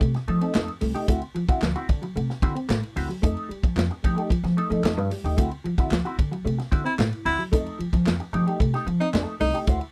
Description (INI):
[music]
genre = funk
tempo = 112 BPM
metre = 4/4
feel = straight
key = unclear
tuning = A4 = 439 Hz
[part]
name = mellow electric guitar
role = accompaniment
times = 0.0-9.9 s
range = A3 to C5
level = -32 LUFS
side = equal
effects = wah
[part]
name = mellow electric guitar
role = riff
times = 0.0-9.8 s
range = F3 to C4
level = -32 LUFS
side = equal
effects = none
[part]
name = upright bass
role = bass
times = 0.0-9.8 s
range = C2 to F3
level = -29 LUFS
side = equal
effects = none
[part]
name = swinging big-band drum kit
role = drums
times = 0.0-9.9 s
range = hi-hat, kick drum, ride cymbal, snare drum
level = -27 LUFS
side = equal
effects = none
[part]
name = group handclap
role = percussion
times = 0.5-9.3 s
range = none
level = -38 LUFS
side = equal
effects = none
[part]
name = warm baritone saxophone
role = second line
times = 6.9-9.6 s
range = Eb4 to E4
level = -26 LUFS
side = equal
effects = none
[sound]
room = little or no reverb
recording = dry, close 1970s-style studio recording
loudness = -25 LUFS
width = mono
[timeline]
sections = 0.0-9.9 A section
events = none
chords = 0.0 F9; 1.1 D9; 3.2 F9; 5.4 D9; 7.5 F9